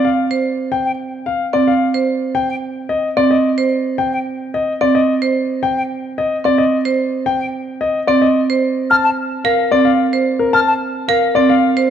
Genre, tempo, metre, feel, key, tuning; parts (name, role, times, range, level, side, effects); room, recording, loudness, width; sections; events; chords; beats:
classical, minimalist pattern music; 110 BPM; 3/4; straight; A4 = 440 Hz
warm grand piano; melody; 0.0-11.7 s; Bb4 to A5; -18 LUFS; left 6 dB
marimba with hard mallets; arpeggios; 0.0-11.9 s; C4 to C5; -16 LUFS; right 5 dB
silver concert flute; arpeggios; 0.9-10.7 s; G5 to F6; -18 LUFS; left 2 dB
moderate scoring stage reverb, RT60 1.9 s; dark, warm production; -14 LUFS; side -9 dB against mid
0.0-11.9 A section
0.0 N.C.; 8.9 Bb5
0.17 | 0.72 1.26 1.81 | 2.35 2.90 3.44 | 3.99 4.54 5.08 | 5.63 6.17 6.72 | 7.26 7.81 8.36 | 8.90 9.45 9.99 | 10.54 11.08 11.63